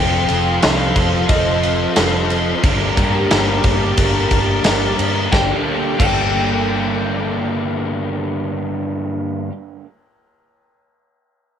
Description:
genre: rock, shoegaze and dream pop.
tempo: 90 BPM.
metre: 4/4.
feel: straight.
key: G minor.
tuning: A4 = 440 Hz.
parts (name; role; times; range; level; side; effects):
lightly driven lead guitar; melody; 0.0-8.8 s; Eb5 to G5; -23 LUFS; left 2 dB; cassette tape, analog delay.
soft string machine; sustained chords; 0.0-8.7 s; Bb3 to D6; -24 LUFS; equal; ensemble chorus, cassette tape.
twelve-string electric guitar; arpeggios; 0.0-9.5 s; F3 to A4; -28 LUFS; right 8 dB; lush chorus, cassette tape, analog delay.
crunchy overdriven guitar; riff; 0.0-9.5 s; G2 to Bb4; -22 LUFS; left 9 dB; analog chorus, cassette tape.
overdriven semi-hollow guitar; riff; 0.0-9.5 s; G2 to Bb4; -24 LUFS; right 8 dB; reverse reverb, cassette tape.
vintage muted fingered electric bass; bass; 0.0-9.4 s; F1 to G2; -23 LUFS; equal; none.
big rock drum kit; drums; 0.3-6.2 s; crash cymbal, kick drum, snare drum; -18 LUFS; equal; cassette tape.
room: light reverb.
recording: home recording on cassette.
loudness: -15 LUFS.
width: side -8 dB against mid.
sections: 0.0-5.3 A section; 5.3-8.0 B section.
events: none.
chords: 0.0 F; 2.6 Gmadd9.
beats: 0.62 1.29 1.96 | 2.63 3.30 3.97 4.64 | 5.32 5.99 6.66 7.33.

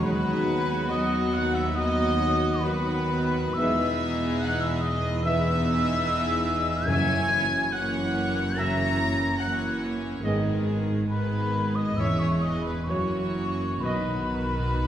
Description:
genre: classical.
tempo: 60-74 BPM.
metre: 4/4.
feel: rubato.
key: B major.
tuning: A4 = 440 Hz.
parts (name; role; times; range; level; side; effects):
rich studio violin section; melody; 0.0-14.9 s; B4 to A#5; -36 LUFS; left 1 dB; none.
mellow concert flute; second line; 0.0-14.9 s; B5 to A#6; -30 LUFS; left 2 dB; none.
rich studio violin section; second line; 0.0-14.9 s; B3 to C#5; -35 LUFS; left 2 dB; none.
warm oboe; second line; 0.0-14.9 s; B4 to A#5; -34 LUFS; right 1 dB; none.
rich studio viola section; accompaniment; 0.0-14.9 s; D#3 to D#4; -30 LUFS; equal; none.
dark French horn section; sustained chords; 0.0-14.2 s; A#3 to B4; -35 LUFS; left 2 dB; none.
warm trombone section; sustained chords; 0.0-14.2 s; C#3 to G#3; -34 LUFS; right 1 dB; none.
mellow trumpet section; stabs; 0.0-14.2 s; C#5 to F#5; -35 LUFS; right 2 dB; none.
dark chamber cello section; bass; 0.0-14.9 s; D#2 to B2; -30 LUFS; equal; none.
dark studio double bass section; bass; 0.0-14.9 s; E1 to D#2; -32 LUFS; right 1 dB; none.
timpani; percussion; 6.9-8.1, 13.8-14.9 s; F#2 to B2; -35 LUFS; left 2 dB; none.
room: wet recital hall reverb, RT60 1.7 s.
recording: recorded in a church or concert hall.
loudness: -23 LUFS.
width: side -10 dB against mid.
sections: 0.0-14.9 A section.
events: timpani fill 13.8-14.9.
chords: 0.1 B/D#; 3.6 Emaj7; 6.9 F#7; 10.2 G#m; 12.0 C#m/E; 12.9 F#7; 13.8 B.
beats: | 0.05 0.91 1.77 2.64 | 3.57 4.42 5.25 6.07 | 6.89 7.74 8.57 9.40 | 10.24 11.10 11.98 12.88 | 13.82 14.81.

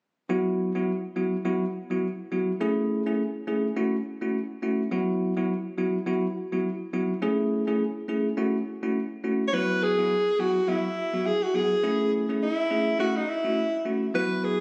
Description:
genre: afrobeats.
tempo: 104 BPM.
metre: 4/4.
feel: swing 58% on 16ths.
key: unclear.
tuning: A4 = 440 Hz.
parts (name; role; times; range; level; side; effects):
bell-like tine electric piano; accompaniment; 0.3-14.6 s; F#3 to G#4; -28 LUFS; equal; none.
breathy alto saxophone; melody; 9.5-14.6 s; D#4 to C#5; -27 LUFS; equal; digital delay.
room: moderate lush hall reverb, RT60 2.7 s.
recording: recorded on a phone in the room, club reverb.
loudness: -27 LUFS.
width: mono.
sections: 0.3-9.5 A section; 9.5-14.6 B section.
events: none.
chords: 0.3 Bsus4; 2.6 Amaj7; 3.8 F#m7; 4.9 Bsus4; 7.2 Amaj7; 8.4 F#m7; 9.5 Bsus4; 11.8 Amaj7; 13.0 F#m7.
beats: | 0.30 0.88 1.45 2.03 | 2.61 3.18 3.76 4.34 | 4.92 5.49 6.07 6.65 | 7.22 7.80 8.38 8.95 | 9.53 10.11 10.68 11.26 | 11.84 12.41 12.99 13.57 | 14.15.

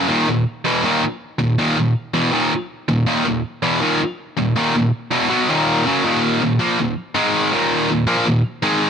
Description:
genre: metal.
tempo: 161 BPM.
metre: 4/4.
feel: straight.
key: Eb minor.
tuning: A4 = 439 Hz.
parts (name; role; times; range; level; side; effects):
high-gain distorted guitar; solo; 0.0-8.9 s; Eb2 to Cb4; -16 LUFS; equal; distortion.
room: digital ambience.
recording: none.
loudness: -16 LUFS.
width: side -7 dB against mid.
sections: 0.0-6.0 A section; 6.0-8.9 B section.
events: none.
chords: 0.0 Eb5; 7.2 Ab5; 7.5 Eb5.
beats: | 0.09 0.47 0.84 1.21 | 1.58 1.96 2.33 2.70 | 3.08 3.45 3.82 4.19 | 4.56 4.93 5.31 5.68 | 6.05 6.42 6.79 7.16 | 7.53 7.90 8.27 8.64.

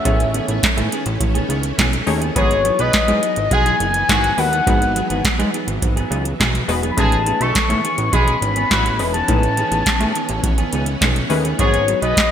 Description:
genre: early-eighties boogie funk.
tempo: 104 BPM.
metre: 4/4.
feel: straight.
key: unclear.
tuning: A4 = 440 Hz.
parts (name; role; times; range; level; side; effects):
expressive synth lead; melody; 0.0-12.3 s; C#5 to C#6; -20 LUFS; left 4 dB; chorus, ping-pong delay.
funky polysynth comp; accompaniment; 0.0-12.1 s; G#3 to C#5; -25 LUFS; left 4 dB; chorus.
string machine, violins; sustained chords; 0.0-12.3 s; E3 to C#4; -28 LUFS; right 1 dB; ensemble chorus.
clean electric guitar; riff; 0.0-12.2 s; D#3 to G#4; -26 LUFS; right 3 dB; wide subtle chorus.
fat analog bass; bass; 0.1-12.2 s; E1 to A2; -22 LUFS; right 1 dB; none.
booming analog drum machine; drums; 0.1-12.3 s; handclaps, hi-hat, kick drum, snare drum; -18 LUFS; right 1 dB; gated reverb.
clear horn section; second line; 2.4-12.3 s; F#3 to B4; -25 LUFS; right 3 dB; none.
room: moderate lush hall reverb, RT60 2.4 s.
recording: bright 1980s-style digital production.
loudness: -15 LUFS.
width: side -9 dB against mid.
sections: 0.0-12.3 A section.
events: none.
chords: 0.0 Amaj9#11; 2.4 G#m7; 7.0 Amaj9#11; 11.6 G#m7.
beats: | 0.05 0.63 1.21 1.78 | 2.36 2.94 3.51 4.09 | 4.67 5.24 5.82 6.40 | 6.97 7.55 8.13 8.71 | 9.28 9.86 10.44 11.01 | 11.59 12.17.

